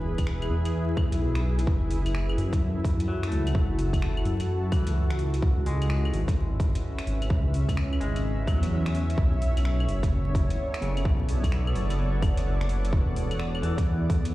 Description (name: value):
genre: future garage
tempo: 128 BPM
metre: 4/4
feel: swing 64% on 16ths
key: F# minor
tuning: A4 = 438 Hz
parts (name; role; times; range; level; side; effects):
- granular cloud pad; sustained chords; 0.0-14.3 s; B3 to F#5; -33 LUFS; equal; built-in reverb, vintage 12-bit sampler grit, sidechain pumping
- dark detuned saw bass; bass; 0.0-14.3 s; E1 to F#2; -26 LUFS; equal; sidechain pumping
- electronic kick drum; drums; 0.2-14.2 s; none; -25 LUFS; equal; vintage 12-bit sampler grit, studio reverb
- garage drum kit; drums; 0.2-14.3 s; claves, finger snaps, hi-hat; -40 LUFS; left 1 dB; overdrive, vintage 12-bit sampler grit, studio reverb
- clean electric guitar; accompaniment; 3.1-14.2 s; C#3 to A3; -37 LUFS; left 2 dB; sidechain pumping, tape echo
room: little or no reverb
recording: played on a big sound system in a bare room, large studio reverb, vinyl crackle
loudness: -24 LUFS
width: side -17 dB against mid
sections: 0.0-14.3 A section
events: none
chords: 0.0 E; 1.7 F#m7; 5.4 C#m7; 9.2 Bm11; 12.9 E7